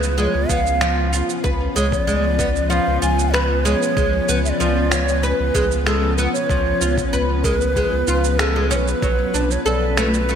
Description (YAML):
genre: organic downtempo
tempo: 95 BPM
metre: 4/4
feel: straight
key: unclear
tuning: A4 = 440 Hz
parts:
  - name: breathy ney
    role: melody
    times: 0.0-10.4 s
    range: A4 to G#5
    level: -22 LUFS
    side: right 1 dB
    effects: ping-pong delay
  - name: granular cloud pad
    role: sustained chords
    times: 0.0-10.4 s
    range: E#3 to B4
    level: -24 LUFS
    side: left 2 dB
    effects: built-in reverb, sidechain pumping
  - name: warm sub bass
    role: bass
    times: 0.0-10.4 s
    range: B1 to C#2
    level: -22 LUFS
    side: equal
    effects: sidechain pumping
  - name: electronic cabasa and finger snaps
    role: drums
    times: 0.0-10.4 s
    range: none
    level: -26 LUFS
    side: right 3 dB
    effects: studio ambience, gated reverb
  - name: oud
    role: arpeggios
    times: 0.2-10.4 s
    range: E#3 to B4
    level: -23 LUFS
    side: equal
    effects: ping-pong delay
  - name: electronic kick drum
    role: drums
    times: 0.5-9.2 s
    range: none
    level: -24 LUFS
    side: equal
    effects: studio ambience
  - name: drifting glass-harmonics texture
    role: texture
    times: 9.3-10.4 s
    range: B4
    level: -33 LUFS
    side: right 4 dB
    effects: chorus, built-in reverb
room: moderate lush hall reverb, RT60 1.6 s, digital ambience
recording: bright 1980s-style digital production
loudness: -16 LUFS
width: side -8 dB against mid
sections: 0.0-10.4 A section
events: none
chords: 0.0 C#7; 9.0 Bm9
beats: 0.18 0.81 | 1.44 2.08 2.71 3.34 | 3.97 4.60 5.23 5.87 | 6.50 7.13 7.76 8.39 | 9.02 9.65 10.29